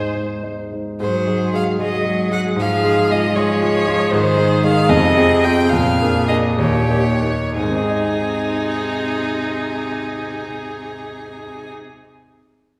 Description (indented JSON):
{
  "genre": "quick classical-period movement for piano quartet",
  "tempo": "59-78 BPM (dotted quarters)",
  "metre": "6/8",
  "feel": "rubato",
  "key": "Ab major",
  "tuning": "A4 = 440 Hz",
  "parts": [
    { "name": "dark violin", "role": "melody", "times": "0.0-11.7 s", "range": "Ab4 to G5", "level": "-24 LUFS", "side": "equal", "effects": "none" },
    { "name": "rich cello", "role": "second line", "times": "0.0-11.7 s", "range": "Ab2 to Gb3", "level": "-26 LUFS", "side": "equal", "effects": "none" },
    { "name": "dark concert grand piano", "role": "accompaniment", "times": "0.0-12.1 s", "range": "Eb2 to Eb5", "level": "-21 LUFS", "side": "equal", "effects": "none" },
    { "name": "rich viola", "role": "accompaniment", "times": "0.0-11.7 s", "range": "Eb4 to C5", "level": "-27 LUFS", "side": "equal", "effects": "none" }
  ],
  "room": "wet recital hall reverb, RT60 1.4 s",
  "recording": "recorded in a church or concert hall",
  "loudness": "-18 LUFS",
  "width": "mono",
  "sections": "0.0-1.0 A section; 1.0-7.6 B section; 7.6-11.4 C section",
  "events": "slowing down 3.4-7.6",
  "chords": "0.0 Ab; 1.0 Ab7; 2.6 Db/Ab; 4.1 Ab; 4.9 Fm; 5.7 Bb7/F; 6.6 Eb7; 7.6 Ab"
}